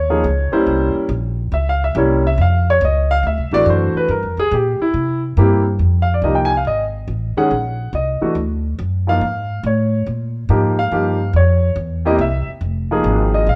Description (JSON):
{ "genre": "jazz piano trio", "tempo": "140 BPM", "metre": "4/4", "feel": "swing 67% on 8ths", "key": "F minor", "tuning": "A4 = 440 Hz", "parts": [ { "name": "warm grand piano", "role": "melody", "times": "0.0-13.6 s", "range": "Eb3 to Ab5", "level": "-20 LUFS", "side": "equal", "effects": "none" }, { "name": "upright bass", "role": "bass", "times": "0.0-13.6 s", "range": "F1 to C3", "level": "-20 LUFS", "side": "equal", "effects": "none" } ], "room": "moderate large studio reverb, RT60 1.2 s", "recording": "band playing live in one room", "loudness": "-17 LUFS", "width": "mono", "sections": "0.0-5.8 A section; 5.8-13.6 A section", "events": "grand piano solo 0.0-13.6", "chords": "0.0 Gb6 (rootless); 0.7 C7b9; 2.4 Dbadd9; 3.2 D7; 4.1 Gm7b5; 4.9 C7; 5.8 Fm9; 7.5 Ebm; 8.4 D; 9.2 Db; 10.9 Gm7b5; 11.8 C; 12.6 Fm7" }